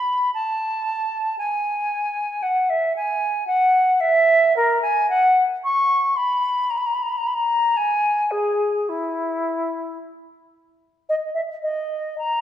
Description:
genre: classical, baroque-style fantasia for unaccompanied flute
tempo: 56 BPM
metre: 3/4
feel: uneven beats, rubato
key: E major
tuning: A4 = 440 Hz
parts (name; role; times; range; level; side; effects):
- silver concert flute; solo; 0.0-12.4 s; E4 to C#6; -18 LUFS; equal; none
room: wet recital hall reverb, RT60 1.7 s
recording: heard from further back in the room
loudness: -18 LUFS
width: side -10 dB against mid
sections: 0.0-12.4 A section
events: none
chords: none

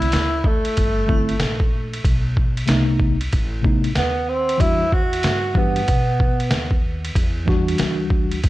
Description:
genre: hip hop, jazz-hop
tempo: 94 BPM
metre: 4/4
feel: swing 62% on 16ths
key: E minor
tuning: A4 = 440 Hz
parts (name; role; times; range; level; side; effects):
- breathy tenor saxophone; melody; 0.0-6.8 s; A3 to F#4; -22 LUFS; right 1 dB; tape echo
- tine electric piano; accompaniment; 0.0-8.4 s; C3 to G4; -21 LUFS; left 1 dB; medium stereo tremolo
- upright bass; bass; 0.0-8.5 s; G1 to B2; -25 LUFS; equal; none
- trip hop sampler-style drum kit; drums; 0.0-8.5 s; hi-hat, kick drum, ride cymbal, snare drum; -20 LUFS; equal; none
room: light reverb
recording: dark, warm production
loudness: -17 LUFS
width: side -17 dB against mid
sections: 0.0-8.5 A section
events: none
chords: 0.0 C69; 2.0 B7b9; 4.6 Em9

